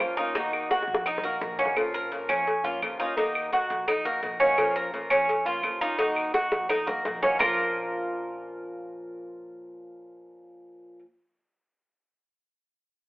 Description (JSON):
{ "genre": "latin, Cuban son and guajira", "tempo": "170 BPM", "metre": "4/4", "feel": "straight", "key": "Bb minor", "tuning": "A4 = 440 Hz", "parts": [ { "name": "bluegrass banjo", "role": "melody", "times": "0.0-1.5 s", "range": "Bb4 to C5", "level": "-33 LUFS", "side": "equal", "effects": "none" }, { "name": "fingerpicked plugged-in swing-style acoustic guitar", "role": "accompaniment", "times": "0.0-11.1 s", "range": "Bb2 to Gb4", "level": "-33 LUFS", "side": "left 1 dB", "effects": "none" }, { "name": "Cuban tres", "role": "arpeggios", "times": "0.0-11.0 s", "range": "Bb3 to Bb4", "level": "-26 LUFS", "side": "right 1 dB", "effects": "none" }, { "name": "upright bass", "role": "bass", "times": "0.0-11.0 s", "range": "Bb1 to F2", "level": "-48 LUFS", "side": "equal", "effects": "none" }, { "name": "bongos and cowbell", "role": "percussion", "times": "0.0-7.5 s", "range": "none", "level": "-30 LUFS", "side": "left 1 dB", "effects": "none" }, { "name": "claves", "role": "percussion", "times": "0.0-7.5 s", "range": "none", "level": "-32 LUFS", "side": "equal", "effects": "none" } ], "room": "moderate studio reverb, RT60 0.8 s", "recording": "band playing live in one room, telephone sound", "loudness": "-24 LUFS", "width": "side -21 dB against mid", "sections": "0.0-1.8 A section; 1.8-7.4 B section; 7.4-10.2 C section", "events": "drum fill 0.7-1.8, 6.3-7.4", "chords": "0.4 Ebm; 1.8 Bbm; 3.2 Ebm; 4.6 Bbm; 6.0 Ebm; 7.4 Bbm" }